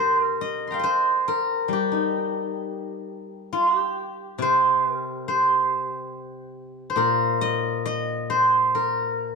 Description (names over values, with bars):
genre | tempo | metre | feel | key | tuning
chinese traditional, Chinese solo plucked strings | 68 BPM | 2/4 | rubato | unclear | A4 = 438 Hz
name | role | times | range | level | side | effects
steel-string zither | solo | 0.0-9.4 s | Bb2 to C6 | -21 LUFS | equal | none
room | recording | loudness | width
light reverb | close, detailed microphones | -20 LUFS | side -4 dB against mid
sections
0.0-3.5 A section; 3.5-9.4 B section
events
none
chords
none